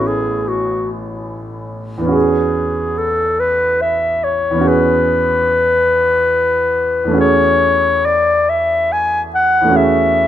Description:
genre	classical, impressionist duo for clarinet and grand piano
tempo	47 BPM (dotted quarters)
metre	12/8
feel	rubato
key	unclear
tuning	A4 = 443 Hz
part	warm clarinet	melody	0.0-10.3 s	F#4 to G#5	-14 LUFS	left 2 dB	none
part	clear concert grand piano	accompaniment	0.0-10.3 s	A1 to A4	-18 LUFS	right 2 dB	none
room	light reverb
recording	close, detailed microphones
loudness	-12 LUFS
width	side -11 dB against mid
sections	0.0-10.3 A section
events	none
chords	0.0 Aadd9; 2.1 E69; 7.2 F#m9/E

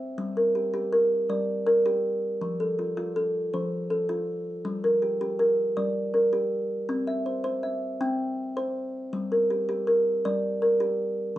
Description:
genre	southern african traditional, mbira-style interlocking cycle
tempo	107 BPM (dotted quarters)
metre	12/8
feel	straight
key	G dorian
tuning	A4 = 440 Hz
part	kalimba	solo	0.2-11.4 s	F3 to G5	-24 LUFS	equal	none
room	light reverb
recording	dark, warm production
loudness	-24 LUFS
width	side -14 dB against mid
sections	0.0-11.4 A section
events	none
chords	0.2 Gm; 2.4 F; 4.7 Gm; 6.9 C; 9.1 Gm

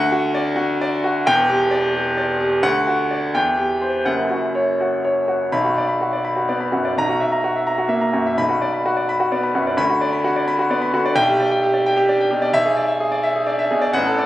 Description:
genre	classical, virtuoso piano study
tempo	86 BPM (dotted quarters)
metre	6/8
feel	rubato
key	B minor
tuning	A4 = 441 Hz
part	bright concert grand piano	solo	0.0-14.3 s	E1 to B5	-17 LUFS	equal	none
room	moderate recital hall reverb, RT60 1.4 s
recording	recorded on a phone in the room, studio reverb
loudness	-17 LUFS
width	side -14 dB against mid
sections	0.0-5.5 A section; 5.5-14.3 B section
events	none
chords	0.0 D; 1.3 Em7; 2.6 D; 3.3 C/E; 4.1 F#5; 5.5 Bm; 7.0 F#7/B; 8.4 Bm; 9.8 Bm/D; 11.2 G/B; 12.5 E7/B

